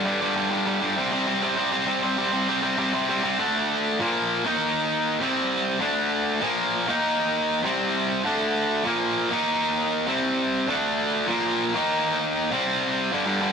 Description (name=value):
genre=punk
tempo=197 BPM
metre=4/4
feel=straight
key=unclear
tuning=A4 = 440 Hz
part: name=distorted electric guitar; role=solo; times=0.0-13.5 s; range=G2 to Eb4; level=-21 LUFS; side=equal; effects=overdrive
room=moderate stone room reverb, RT60 1.3 s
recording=rough rehearsal-room recording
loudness=-21 LUFS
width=side -6 dB against mid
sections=0.0-3.4 A section; 3.4-13.1 B section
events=half time 3.4-13.1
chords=0.0 G5; 1.0 C5; 3.4 D5; 4.0 Bb5; 4.4 Eb5; 5.2 C5; 5.8 D5; 6.4 Bb5; 6.9 Eb5; 7.6 C5; 8.3 D5; 8.9 Bb5; 9.3 Eb5; 10.1 C5; 10.7 D5; 11.3 Bb5; 11.8 Eb5; 12.5 C5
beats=0.06 0.36 0.66 | 0.96 1.27 1.57 1.87 | 2.17 2.48 2.78 3.08 | 3.38 3.69 3.99 4.30 | 4.60 4.90 5.21 5.51 | 5.82 6.12 6.42 6.73 | 7.03 7.34 7.64 7.95 | 8.25 8.55 8.86 9.16 | 9.47 9.77 10.08 10.38 | 10.69 10.99 11.30 11.60 | 11.91 12.21 12.52 12.82 | 13.13 13.43